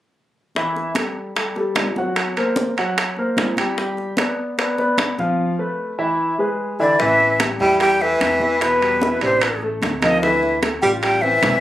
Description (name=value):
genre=Afro-Cuban jazz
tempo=149 BPM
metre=4/4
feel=straight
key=A minor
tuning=A4 = 438 Hz
part: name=warm grand piano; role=accompaniment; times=0.6-11.6 s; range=D3 to G5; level=-22 LUFS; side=left 1 dB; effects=none
part: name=bongos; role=percussion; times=0.6-11.6 s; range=none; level=-26 LUFS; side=left 5 dB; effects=none
part: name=congas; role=percussion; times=0.6-11.6 s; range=none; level=-27 LUFS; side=equal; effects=none
part: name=timbales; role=percussion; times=1.0-11.6 s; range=none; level=-23 LUFS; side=right 4 dB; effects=none
part: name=jazz flute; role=melody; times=6.8-11.6 s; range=B4 to G5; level=-17 LUFS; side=equal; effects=none
part: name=clear baritone saxophone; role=second line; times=6.8-11.6 s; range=B2 to G3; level=-20 LUFS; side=equal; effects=none
part: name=upright bass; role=bass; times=7.0-11.6 s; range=A1 to E2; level=-30 LUFS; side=equal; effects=none
room=light reverb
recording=recorded on a phone in the room, studio reverb, compression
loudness=-17 LUFS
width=side -13 dB against mid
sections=0.6-7.0 A section; 7.0-11.6 B section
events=none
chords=0.6 A5; 2.2 F#; 3.8 G; 5.4 Fmaj7#11; 6.2 E; 7.0 A5; 8.6 Em7; 9.4 Amadd11; 10.2 Dm9